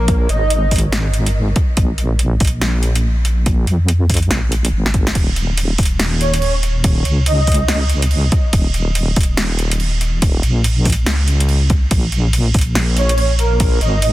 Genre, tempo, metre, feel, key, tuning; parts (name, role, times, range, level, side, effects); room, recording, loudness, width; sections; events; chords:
deep dubstep; 142 BPM; 4/4; swing 61% on 16ths, half-time; A4 = 440 Hz
breathy flute-like synth lead; melody; 0.0-0.7, 6.2-7.9, 13.0-14.1 s; Bb4 to Eb5; -23 LUFS; right 1 dB; ensemble chorus, dub echo
deep soft wobble bass; bass; 0.0-14.1 s; Eb1 to F2; -16 LUFS; equal; chorus, tube saturation
deep house drum kit; drums; 0.1-14.1 s; crash cymbal, hi-hat, snare drum; -21 LUFS; right 1 dB; overdrive, small room ambience
electronic kick drum; drums; 0.1-13.7 s; -16 LUFS; equal; overdrive, small room ambience
little or no reverb; dense, heavily limited modern master; -13 LUFS; side -16 dB against mid
0.0-14.1 A section
drum fill 4.8-5.2
0.0 Bb5; 5.2 Eb5; 11.9 Bb5